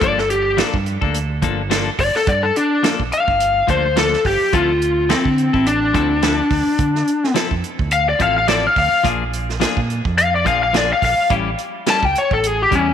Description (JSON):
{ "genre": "straight-eighth soul blues", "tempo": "106 BPM", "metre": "4/4", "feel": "swing 56% on 16ths", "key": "D minor", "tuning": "A4 = 439 Hz", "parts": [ { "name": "lead guitar through a small cranked amp", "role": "melody", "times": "0.0-12.9 s", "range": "C4 to A5", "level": "-16 LUFS", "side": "left 2 dB", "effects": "overdrive" }, { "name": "clean electric guitar", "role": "stabs", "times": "0.0-12.9 s", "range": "F3 to A4", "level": "-23 LUFS", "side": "left 8 dB", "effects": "none" }, { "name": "fingered electric bass", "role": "bass", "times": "0.0-12.9 s", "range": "G1 to D3", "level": "-23 LUFS", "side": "right 2 dB", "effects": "none" }, { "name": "warm soul drum kit", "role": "drums", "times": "0.0-12.9 s", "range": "hi-hat, kick drum, snare drum", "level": "-22 LUFS", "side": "right 5 dB", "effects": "none" } ], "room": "moderate echo chamber reverb, RT60 2.7 s", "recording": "1960s-style stereo", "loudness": "-15 LUFS", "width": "side -8 dB against mid", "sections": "0.0-12.9 A section", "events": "none", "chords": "0.0 Gm9; 4.5 Dm9; 9.0 Bb7; 11.3 A7", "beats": "| 0.01 0.58 1.14 1.71 | 2.27 2.84 3.40 3.96 | 4.53 5.09 5.66 6.22 | 6.79 7.35 7.92 8.48 | 9.05 9.61 10.18 10.74 | 11.31 11.87 12.44" }